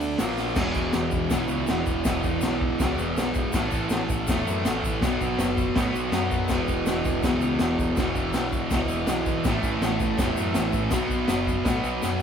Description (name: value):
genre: garage rock duo or trio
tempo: 162 BPM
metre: 4/4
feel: straight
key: unclear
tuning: A4 = 440 Hz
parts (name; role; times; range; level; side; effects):
- fuzz guitar; riff; 0.0-12.2 s; E2 to D4; -25 LUFS; right 1 dB; distortion
- growling picked electric bass; bass; 0.0-12.2 s; E1 to A2; -31 LUFS; equal; overdrive
- tube shaker; percussion; 0.0-12.1 s; none; -41 LUFS; left 4 dB; none
- crunchy breakbeat drum kit; drums; 0.2-12.1 s; crash cymbal, hi-hat, kick drum, snare drum; -26 LUFS; left 1 dB; none
room: light reverb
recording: band playing live in one room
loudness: -22 LUFS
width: side -7 dB against mid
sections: 0.6-12.2 A section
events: drum fill 0.4, 12.0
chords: 0.2 A#5; 0.6 E5; 3.5 A5; 5.0 B5; 6.5 E5; 9.5 A5; 10.9 B5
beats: 0.19 | 0.57 0.94 1.31 1.69 | 2.06 2.43 2.80 3.17 | 3.54 3.91 4.28 4.65 | 5.03 5.39 5.76 6.13 | 6.50 6.87 7.24 7.61 | 7.98 8.35 8.72 9.09 | 9.45 9.82 10.19 10.56 | 10.92 11.29 11.66 12.03